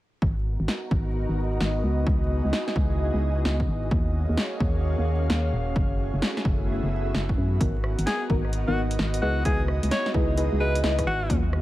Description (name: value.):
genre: UK garage, two-step garage.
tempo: 130 BPM.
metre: 4/4.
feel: swing 64% on 16ths.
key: G# minor.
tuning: A4 = 441 Hz.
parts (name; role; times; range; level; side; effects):
soft string machine; sustained chords; 0.5-11.6 s; A3 to E#5; -34 LUFS; equal; ensemble chorus, sidechain pumping.
organ-like FM bass; bass; 0.2-11.6 s; D#1 to F#2; -25 LUFS; equal; none.
electronic kick drum; drums; 0.2-11.4 s; none; -26 LUFS; equal; overdrive.
airy breathy pad; texture; 0.2-11.6 s; B3 to E#5; -33 LUFS; equal; chorus, sidechain pumping.
punchy analog drum machine; drums; 0.7-11.6 s; hi-hat, rim click, snare drum; -29 LUFS; equal; none.
deep mellow chord stab; stabs; 7.6-11.4 s; F#3 to E5; -30 LUFS; equal; chorus, phaser, dub echo.
bright alto saxophone; melody; 8.1-11.4 s; F#4 to C#5; -30 LUFS; left 1 dB; dub echo.
room: little or no reverb.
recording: vinyl crackle.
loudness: -22 LUFS.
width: side -16 dB against mid.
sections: 0.2-11.6 A section.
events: filter sweep on FM bass 0.2-11.6.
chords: 0.2 G#m7; 1.8 C#m7; 3.9 D#m7; 5.8 F#m7; 7.6 G#m7; 9.2 C#m7.